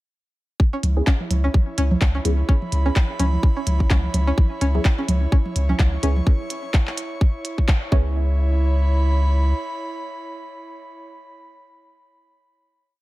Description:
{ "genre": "minimal techno", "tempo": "127 BPM", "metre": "4/4", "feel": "swing 57% on 16ths", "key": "C# minor", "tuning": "A4 = 440 Hz", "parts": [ { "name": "electronic kick drum", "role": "drums", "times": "0.6-8.0 s", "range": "none", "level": "-17 LUFS", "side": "equal", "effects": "overdrive" }, { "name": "airy breathy pad", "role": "texture", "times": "0.6-11.4 s", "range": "E4 to C#6", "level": "-31 LUFS", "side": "right 2 dB", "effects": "chorus, sidechain pumping" }, { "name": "string-like resonator pluck", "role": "riff", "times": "0.7-8.4 s", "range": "C#4", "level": "-29 LUFS", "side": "equal", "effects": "chorus, sidechain pumping, tape echo" }, { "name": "punchy sub bass", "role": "bass", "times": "0.8-9.5 s", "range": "C#2", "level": "-19 LUFS", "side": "equal", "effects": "sidechain pumping" }, { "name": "minimal click drum kit", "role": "drums", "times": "0.8-7.8 s", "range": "handclaps, hi-hat", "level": "-28 LUFS", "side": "equal", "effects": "none" }, { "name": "electronic toms and congas", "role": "percussion", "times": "0.8-6.2 s", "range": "none", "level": "-29 LUFS", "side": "right 2 dB", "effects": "tape echo" }, { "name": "filtered dub chord stab", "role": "stabs", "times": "1.0-11.0 s", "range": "B3 to G#4", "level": "-31 LUFS", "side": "equal", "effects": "phaser, tape echo" } ], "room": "little or no reverb", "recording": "none", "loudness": "-18 LUFS", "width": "side -18 dB against mid", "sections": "0.6-8.2 groove; 8.2-11.9 final note", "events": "band accent 7.7", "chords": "0.6 C#m7", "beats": "| 0.60 1.07 1.54 2.02 | 2.49 2.96 3.43 3.90 | 4.38 4.85 5.32 5.79 | 6.27 6.74 7.21 7.68 | 8.16 8.63 9.10 9.57 | 10.05 10.52 10.99" }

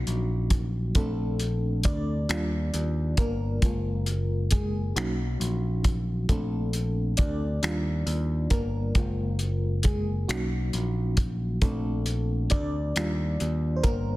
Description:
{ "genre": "slow six-eight R&B", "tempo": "45 BPM (dotted quarters)", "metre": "6/8", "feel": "straight", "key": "Bb major", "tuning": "A4 = 440 Hz", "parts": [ { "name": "FM electric piano with tremolo", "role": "accompaniment", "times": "0.0-14.2 s", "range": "F#3 to D5", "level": "-31 LUFS", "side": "equal", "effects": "none" }, { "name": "picked electric bass", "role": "bass", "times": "0.0-14.2 s", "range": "Gb1 to Eb2", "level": "-28 LUFS", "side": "equal", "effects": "none" }, { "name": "cloth-damped thuddy drum kit", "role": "drums", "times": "0.1-14.0 s", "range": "finger snaps, hi-hat, kick drum", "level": "-27 LUFS", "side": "equal", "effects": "soft clipping on snare" } ], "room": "small room ambience", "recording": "dense, heavily limited modern master", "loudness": "-24 LUFS", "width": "side -18 dB against mid", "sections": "0.0-14.2 A section", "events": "FM electric piano solo 0.0-14.2", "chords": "0.0 Bmaj9 (rootless); 1.0 Bbmaj9; 2.3 Ebmaj9; 3.6 Gbmaj9; 5.0 Bmaj9; 6.3 Bbmaj9; 7.6 Ebmaj9; 9.0 Gbmaj9; 10.3 Bmaj9; 11.6 Bbmaj9; 13.0 Ebmaj9", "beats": "| 0.95 2.29 | 3.62 4.95 | 6.29 7.62 | 8.95 10.29 | 11.62 12.95" }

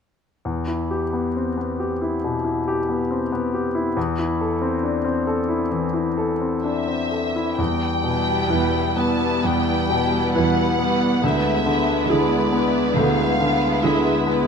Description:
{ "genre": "classical, romantic movement for piano and orchestra", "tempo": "67 BPM", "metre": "4/4", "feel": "uneven beats, rubato", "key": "E minor", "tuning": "A4 = 438 Hz", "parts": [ { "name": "bright grand piano", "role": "melody", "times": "0.5-14.5 s", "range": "D2 to B4", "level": "-21 LUFS", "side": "left 2 dB", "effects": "none" }, { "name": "warm symphonic violin section", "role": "melody", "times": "6.6-14.3 s", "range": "D5 to A5", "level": "-25 LUFS", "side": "left 1 dB", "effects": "none" }, { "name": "mellow French horn section", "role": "sustained chords", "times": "7.6-14.5 s", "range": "G3 to B3", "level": "-28 LUFS", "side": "left 1 dB", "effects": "none" }, { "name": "warm symphonic cello section", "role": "bass", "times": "7.6-14.5 s", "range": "E2 to D3", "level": "-27 LUFS", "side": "right 6 dB", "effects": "none" }, { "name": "warm symphonic violin section", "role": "second line", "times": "8.0-14.5 s", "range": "E4 to B4", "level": "-28 LUFS", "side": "left 3 dB", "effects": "none" }, { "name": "rich symphonic viola section", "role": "accompaniment", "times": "8.0-14.5 s", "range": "G3 to B3", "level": "-26 LUFS", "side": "right 3 dB", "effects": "none" } ], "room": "light reverb", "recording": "close, detailed microphones", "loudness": "-19 LUFS", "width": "side -6 dB against mid", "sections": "0.5-7.6 A section; 7.6-14.5 B section", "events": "none", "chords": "0.5 Em; 4.0 Am/E; 7.6 Em; 11.2 E7/D", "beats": "| 0.45 1.35 2.22 3.09 | 3.96 4.83 5.70 6.63 | 7.59 8.50 9.43 10.35 | 11.23 12.09 12.96 13.83" }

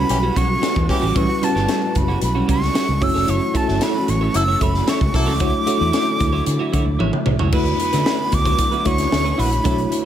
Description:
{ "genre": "polished 1980s jazz-funk pop", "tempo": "113 BPM", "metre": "4/4", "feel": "straight", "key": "unclear", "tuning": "A4 = 436 Hz", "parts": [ { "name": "breathy jazz flute", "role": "melody", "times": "0.0-10.1 s", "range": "A5 to E6", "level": "-23 LUFS", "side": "right 1 dB", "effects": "ping-pong delay" }, { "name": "tine electric piano", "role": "accompaniment", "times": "0.0-10.1 s", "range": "G3 to E5", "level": "-23 LUFS", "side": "left 1 dB", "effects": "overdrive, fast stereo tremolo, wide subtle chorus" }, { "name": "warm studio string section", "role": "sustained chords", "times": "0.0-10.1 s", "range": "C#3 to F#4", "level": "-30 LUFS", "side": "equal", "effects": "none" }, { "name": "twelve-string electric guitar", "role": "riff", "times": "0.0-10.0 s", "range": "G3 to E5", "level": "-27 LUFS", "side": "right 8 dB", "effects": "analog chorus" }, { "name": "fingered electric bass", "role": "bass", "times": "0.0-9.8 s", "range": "F1 to D3", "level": "-22 LUFS", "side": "equal", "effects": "none" }, { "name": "warm horn section", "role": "second line", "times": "0.1-1.1, 4.3-5.3 s", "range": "E3 to A4", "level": "-26 LUFS", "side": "left 2 dB", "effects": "none" }, { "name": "crisp fusion drum kit", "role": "drums", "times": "0.1-10.0 s", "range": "crash cymbal, hi-hat, kick drum, snare drum, toms", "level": "-22 LUFS", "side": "equal", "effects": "gated reverb" } ], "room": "small room ambience", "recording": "none", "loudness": "-16 LUFS", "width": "side -10 dB against mid", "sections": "0.0-7.5 A section; 7.5-10.1 B section", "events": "tine electric piano fill 6.7-7.5; drum fill 7.0-7.5", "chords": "0.0 A13; 3.0 F#m7; 5.4 Dmaj9; 7.5 D69", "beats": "0.10 0.63 | 1.16 1.69 2.22 2.75 | 3.28 3.81 4.34 4.88 | 5.41 5.94 6.47 7.00 | 7.53 8.06 8.59 9.12 | 9.65" }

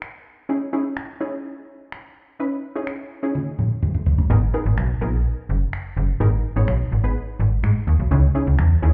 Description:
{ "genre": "dance-pop", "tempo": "126 BPM", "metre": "4/4", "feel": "straight", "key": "unclear", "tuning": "A4 = 440 Hz", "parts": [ { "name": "unplugged drum kit", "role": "drums", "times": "0.0-8.7 s", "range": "finger snaps, toms", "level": "-26 LUFS", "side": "equal", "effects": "none" }, { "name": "punchy chord stab", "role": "accompaniment", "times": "0.5-8.9 s", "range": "B3 to C#5", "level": "-29 LUFS", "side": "equal", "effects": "chorus" }, { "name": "slap-like FM bass", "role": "bass", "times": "4.3-8.9 s", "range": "F#1 to G#2", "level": "-20 LUFS", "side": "equal", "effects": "none" } ], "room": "light reverb", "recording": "heard muffled through a wall, club reverb, EQ", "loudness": "-22 LUFS", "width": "mono", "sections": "0.0-8.9 A section", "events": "drum fill 3.3-4.3", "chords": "0.5 C#madd9; 4.3 G#madd9; 8.1 C#madd9", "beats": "0.02 | 0.49 0.97 1.44 1.92 | 2.40 2.87 3.35 3.83 | 4.30 4.78 5.25 5.73 | 6.21 6.68 7.16 7.63 | 8.11 8.59" }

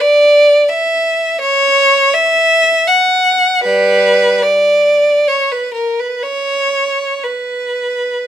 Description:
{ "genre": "classical, free, expressive piece for unaccompanied violin", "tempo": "59-86 BPM", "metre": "3/4", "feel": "rubato", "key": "B minor", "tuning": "A4 = 440 Hz", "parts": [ { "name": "clear violin", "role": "solo", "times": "0.0-8.3 s", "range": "G3 to F#5", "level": "-10 LUFS", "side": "equal", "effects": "none" } ], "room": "light reverb", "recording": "none", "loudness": "-10 LUFS", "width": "side -10 dB against mid", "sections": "0.0-8.3 A section", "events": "none", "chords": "none", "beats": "0.01 0.71 | 1.42 2.15 2.88 | 3.63 4.43 5.29 | 6.24 7.25 8.20" }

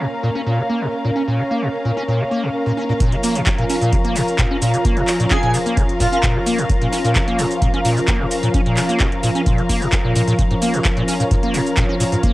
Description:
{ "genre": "acid house", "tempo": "130 BPM", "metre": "4/4", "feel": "straight", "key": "Bb minor", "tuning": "A4 = 440 Hz", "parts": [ { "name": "lush unison pad", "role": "sustained chords", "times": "0.0-12.3 s", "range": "F3 to F4", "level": "-23 LUFS", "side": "equal", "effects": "chorus, sidechain pumping, cassette tape" }, { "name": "liquid acid bass", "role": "riff", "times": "0.0-12.3 s", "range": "Ab2 to Db4", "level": "-20 LUFS", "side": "equal", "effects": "overdrive, ensemble chorus, sidechain pumping, cassette tape" }, { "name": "dark studio string section", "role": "texture", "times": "0.0-12.3 s", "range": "Db4 to Bb5", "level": "-24 LUFS", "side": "left 1 dB", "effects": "sidechain pumping, cassette tape" }, { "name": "booming analog drum machine", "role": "drums", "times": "3.0-12.3 s", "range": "cabasa, handclaps, hi-hat", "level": "-24 LUFS", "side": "equal", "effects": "cassette tape" }, { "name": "electronic kick drum", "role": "drums", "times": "3.0-12.3 s", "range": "none", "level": "-19 LUFS", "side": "equal", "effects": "cassette tape" }, { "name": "airy dreamy lead", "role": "melody", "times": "5.3-6.2 s", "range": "F4 to Ab4", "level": "-24 LUFS", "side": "right 1 dB", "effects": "chorus, cassette tape, analog delay" } ], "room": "light reverb", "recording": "home recording on cassette", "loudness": "-15 LUFS", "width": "side -17 dB against mid", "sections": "0.0-3.0 A section; 3.0-12.3 B section", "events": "filter sweep on analog synth pad 0.0-3.0; drop 3.0-12.3", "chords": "0.0 Bbm", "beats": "0.23 0.69 | 1.16 1.62 2.08 2.54 | 3.00 3.46 3.92 4.39 | 4.85 5.31 5.77 6.23 | 6.70 7.16 7.62 8.08 | 8.54 9.00 9.46 9.93 | 10.39 10.85 11.31 11.77 | 12.23" }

